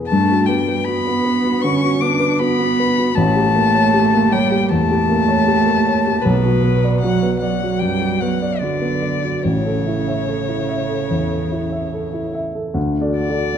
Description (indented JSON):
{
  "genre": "classical, slow romantic movement for piano trio",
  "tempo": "70-79 BPM",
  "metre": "4/4",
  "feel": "rubato",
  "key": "unclear",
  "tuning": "A4 = 438 Hz",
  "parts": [
    { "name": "dark grand piano", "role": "accompaniment", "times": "0.0-13.6 s", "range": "A1 to E5", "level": "-18 LUFS", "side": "left 1 dB", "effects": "none" },
    { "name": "muted violin", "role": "melody", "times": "0.1-13.6 s", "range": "B4 to D6", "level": "-21 LUFS", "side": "left 7 dB", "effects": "none" },
    { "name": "muted cello", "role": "second line", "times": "0.1-12.4 s", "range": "B2 to D4", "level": "-20 LUFS", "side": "right 6 dB", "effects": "none" }
  ],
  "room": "wet recital hall reverb, RT60 1.7 s",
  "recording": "dark, warm production, lossy compression artefacts",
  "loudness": "-15 LUFS",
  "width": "side -8 dB against mid",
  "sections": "0.0-12.8 A section",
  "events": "none",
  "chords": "0.1 Gmaj7; 3.2 A7b9; 6.2 Bm; 9.4 A; 12.8 D",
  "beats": "| 0.09 0.85 1.63 2.40 | 3.16 3.92 4.70 5.46 | 6.24 7.02 7.81 8.61 | 9.44 10.28 11.11 11.94 | 12.76 13.55"
}